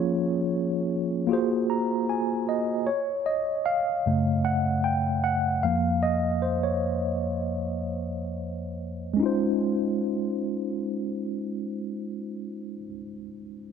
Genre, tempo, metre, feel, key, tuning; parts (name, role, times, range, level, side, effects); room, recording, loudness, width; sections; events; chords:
R&B; 76 BPM; 4/4; swing 54% on 16ths; Db major; A4 = 440 Hz
mellow tine electric piano; solo; 0.0-13.7 s; F2 to Bb5; -25 LUFS; equal; medium stereo tremolo, low-pass filter
light reverb; -24 LUFS; side -7 dB against mid
0.0-2.9 A section; 2.9-9.2 B section; 9.2-12.3 C section
tine electric piano fill 1.3-2.9; tine electric piano solo 2.9-9.2; filter sweep on tine electric piano 2.9-9.2
0.0 Bbm7/F; 1.3 Ab13; 2.9 Gbm; 5.6 Db6/F; 9.2 Dbmaj9